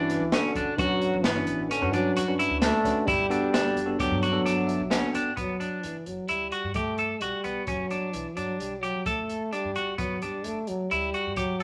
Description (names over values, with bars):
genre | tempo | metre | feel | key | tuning
progressive instrumental, band music in an uneven meter | 130 BPM | 5/4 | straight | G lydian | A4 = 440 Hz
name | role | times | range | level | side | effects
mellow trombone | second line | 0.0-11.6 s | D3 to A3 | -32 LUFS | equal | none
bell-like tine electric piano | accompaniment | 0.0-5.3 s | B3 to G5 | -32 LUFS | equal | none
clean electric guitar | arpeggios | 0.0-11.6 s | B3 to A4 | -32 LUFS | equal | none
upright bass | bass | 0.0-11.6 s | F#1 to G2 | -41 LUFS | equal | none
open jazz drum kit | drums | 0.1-11.6 s | hi-hat, kick drum, snare drum | -34 LUFS | equal | none
room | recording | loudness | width
wet studio reverb, RT60 0.9 s | none | -27 LUFS | mono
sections
0.0-5.4 A section; 5.4-11.6 B section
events
tine electric piano fill 4.4-5.4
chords
0.0 Bmadd9/G; 3.1 Gmaj9